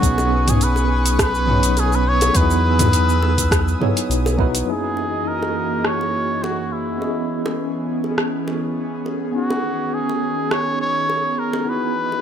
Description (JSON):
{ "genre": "sunset chillout", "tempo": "103 BPM", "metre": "4/4", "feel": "swing 53% on 16ths", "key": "B major", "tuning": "A4 = 441 Hz", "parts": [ { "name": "trumpet with cup mute", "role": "melody", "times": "0.0-12.2 s", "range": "E4 to C#5", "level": "-22 LUFS", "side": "left 1 dB", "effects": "tape echo" }, { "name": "tine electric piano", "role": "accompaniment", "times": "0.0-12.2 s", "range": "F#2 to D#5", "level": "-24 LUFS", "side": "equal", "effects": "fast stereo tremolo, auto-pan, tape echo" }, { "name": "airy breathy pad", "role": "sustained chords", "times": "0.0-12.2 s", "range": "D#3 to E6", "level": "-26 LUFS", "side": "equal", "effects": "chorus" }, { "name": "round analog bass", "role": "bass", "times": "0.0-4.6 s", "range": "B1 to E2", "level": "-19 LUFS", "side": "equal", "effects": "none" }, { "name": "deep house drum kit", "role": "drums", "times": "0.0-10.6 s", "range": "cabasa, hi-hat, rim click, toms", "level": "-22 LUFS", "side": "right 1 dB", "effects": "low-pass filter on hats, low-pass filter on perc, low-pass filter on toms, low-pass filter on snare, low-pass filter on room" }, { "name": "electronic kick drum", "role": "drums", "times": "0.0-4.5 s", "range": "none", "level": "-21 LUFS", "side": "equal", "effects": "none" }, { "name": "bongos", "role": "percussion", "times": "0.2-12.2 s", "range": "none", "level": "-30 LUFS", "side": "right 2 dB", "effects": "none" } ], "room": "light reverb, digital ambience", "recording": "none", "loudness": "-17 LUFS", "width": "side -8 dB against mid", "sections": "0.0-4.7 A section; 4.7-12.2 B section", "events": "none", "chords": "0.0 B69; 2.4 Emaj7; 4.7 F#13; 7.0 C#m7; 9.3 B69; 11.7 Emaj7" }